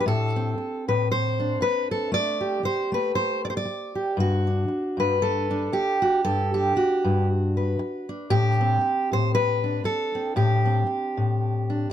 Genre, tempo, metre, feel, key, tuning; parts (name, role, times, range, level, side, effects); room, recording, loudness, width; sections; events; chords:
folk, solo fingerstyle acoustic guitar; 116 BPM; 4/4; swing 57% on 8ths; A4 = 439 Hz
fingerpicked steel-string acoustic guitar; solo; 0.0-11.9 s; G2 to D5; -22 LUFS; equal
little or no reverb; -22 LUFS; side -10 dB against mid
0.0-11.9 A section
0.1 D7sus4/A; 4.2 Gmaj7; 8.3 D7sus4/A